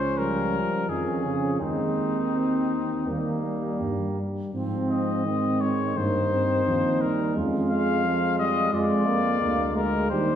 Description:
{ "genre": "classical, brass quintet", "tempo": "82-89 BPM", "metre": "4/4", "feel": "rubato", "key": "Ab major", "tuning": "A4 = 440 Hz", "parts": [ { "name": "warm trumpet", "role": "melody", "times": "0.0-10.4 s", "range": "Eb4 to F5", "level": "-28 LUFS", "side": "left 6 dB", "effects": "none" }, { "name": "warm flugelhorn", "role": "second line", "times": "0.0-10.4 s", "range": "Bb3 to G4", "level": "-31 LUFS", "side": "right 4 dB", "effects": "none" }, { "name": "mellow tuba", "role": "bass", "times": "0.0-10.4 s", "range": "Db2 to Ab2", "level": "-28 LUFS", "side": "right 2 dB", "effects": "none" }, { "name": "clear trombone", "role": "accompaniment", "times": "0.2-10.4 s", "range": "Db3 to Bb3", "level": "-30 LUFS", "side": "right 2 dB", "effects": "none" }, { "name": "mellow French horn", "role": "accompaniment", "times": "0.2-10.4 s", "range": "F3 to Eb4", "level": "-30 LUFS", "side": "left 2 dB", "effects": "none" } ], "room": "wet recital hall reverb, RT60 1.4 s", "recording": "recorded in a church or concert hall", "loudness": "-22 LUFS", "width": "side -9 dB against mid", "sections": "0.0-10.4 A section", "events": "none", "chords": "0.0 Db; 1.6 Ab/Eb; 3.1 Eb; 4.5 Ab; 6.0 Eb/G; 7.4 Db/F; 8.7 Bb7/F" }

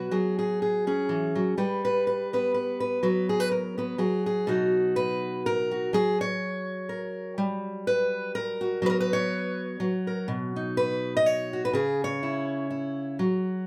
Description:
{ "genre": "folk, solo fingerstyle acoustic guitar", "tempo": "124 BPM", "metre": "3/4", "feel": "swing 56% on 8ths", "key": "B major", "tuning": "A4 = 442 Hz", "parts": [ { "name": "fingerpicked steel-string acoustic guitar", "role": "solo", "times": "0.0-13.7 s", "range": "B2 to D#5", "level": "-27 LUFS", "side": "equal", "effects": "none" } ], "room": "moderate small room reverb, RT60 0.6 s", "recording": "none", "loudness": "-27 LUFS", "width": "mono", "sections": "0.0-4.5 A section; 4.5-13.7 B section", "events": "none", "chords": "0.1 F#sus2; 1.6 G; 3.0 F#sus4; 4.0 F#sus2; 4.5 B; 5.9 F#; 7.4 Gmmaj7/F#; 8.8 F#sus4; 9.8 F#; 10.3 B; 11.7 C#m" }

